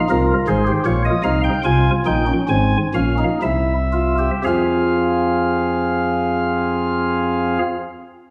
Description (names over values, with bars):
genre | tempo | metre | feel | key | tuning
classical, baroque-style 3-part fugue for pipe organ | 55-81 BPM | 3/4 | straight | F minor | A4 = 440 Hz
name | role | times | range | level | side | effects
chamber organ, flutes | solo | 0.0-7.6 s | Ab1 to Ab5 | -18 LUFS | equal | none
room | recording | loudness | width
wet stone room reverb, RT60 1.4 s | none | -18 LUFS | mono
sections
0.0-4.5 A section; 4.5-8.3 B section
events
slowing down 0.0-4.5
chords
0.0 Fm; 0.9 Bbm; 1.6 Fm; 3.4 C; 4.5 Fm